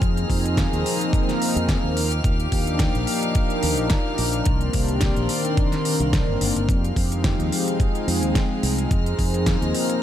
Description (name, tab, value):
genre	nu-disco, nu disco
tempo	108 BPM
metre	4/4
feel	swing 54% on 16ths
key	F dorian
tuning	A4 = 440 Hz
part	warm analog pad	accompaniment	0.0-10.0 s	Eb3 to Bb4	-24 LUFS	left 1 dB	chorus, sidechain pumping, digital delay
part	rich symphonic violin section	sustained chords	0.0-10.0 s	Ab3 to F6	-30 LUFS	left 1 dB	sidechain pumping
part	fingered electric bass with an envelope filter	bass	0.0-9.7 s	G1 to F2	-24 LUFS	equal	none
part	electronic kick drum	drums	0.0-9.6 s	none	-22 LUFS	equal	none
part	pop drum kit	drums	0.0-10.0 s	hi-hat, snare drum	-28 LUFS	equal	none
room	little or no reverb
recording	none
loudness	-19 LUFS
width	side -11 dB against mid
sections	0.0-10.0 A section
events	none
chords	0.0 Bb9sus4; 2.0 Ebmaj9; 4.5 Cm9; 6.7 Fm9; 8.9 Bb9sus4